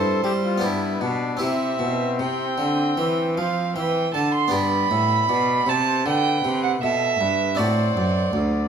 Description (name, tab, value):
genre	classical, baroque-style sonata movement with continuo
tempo	78 BPM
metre	4/4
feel	straight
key	C major, G major from 4.5 s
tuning	A4 = 440 Hz
part	warm trumpet	melody	0.0-8.7 s	C4 to E5	-29 LUFS	left 8 dB	none
part	dark violin	second line	0.0-8.7 s	B4 to C6	-23 LUFS	right 6 dB	none
part	harpsichord	accompaniment	0.0-8.7 s	D2 to G4	-26 LUFS	left 2 dB	none
part	rich cello	bass	0.0-8.7 s	D2 to G3	-24 LUFS	right 1 dB	none
room	moderate recital hall reverb, RT60 1.2 s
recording	minimal, uncompressed stereo recording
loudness	-19 LUFS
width	side -7 dB against mid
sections	0.0-4.5 A section; 4.5-8.7 A section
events	none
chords	0.0 C/G; 0.6 G; 1.4 C; 4.5 G; 7.6 D7